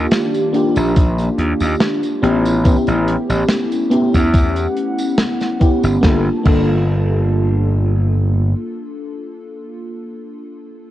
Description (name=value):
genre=vaporwave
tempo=71 BPM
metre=4/4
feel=swing 53% on 16ths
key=G minor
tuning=A4 = 439 Hz
part: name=FM electric piano with soft pad layer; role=accompaniment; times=0.0-10.9 s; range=Bb3 to A4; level=-18 LUFS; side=equal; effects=wide subtle chorus, vintage 12-bit sampler grit, analog delay
part: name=warbly tape-like pad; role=sustained chords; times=0.0-9.3 s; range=Eb3 to F#5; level=-26 LUFS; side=right 1 dB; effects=chorus, built-in reverb
part: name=gritty slap bass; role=bass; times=0.0-8.5 s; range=G1 to E2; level=-16 LUFS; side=equal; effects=overdrive, tube saturation
part: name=modern studio drum kit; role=drums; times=0.1-6.7 s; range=crash cymbal, hi-hat, snare drum, tambourine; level=-22 LUFS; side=equal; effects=none
part: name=electronic kick drum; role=drums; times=1.0-6.7 s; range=none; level=-14 LUFS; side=equal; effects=none
room=moderate lush hall reverb, RT60 1.9 s, small room reverb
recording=worn, warbling old tape, cassette tape, warbly pitch drift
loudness=-13 LUFS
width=side -14 dB against mid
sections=0.0-6.0 A section; 6.0-9.4 B section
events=none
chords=0.0 Ebmaj9; 2.2 A7; 6.0 Gm9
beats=0.12 0.96 1.81 | 2.65 3.50 4.34 5.19 | 6.03 6.88 7.72 8.57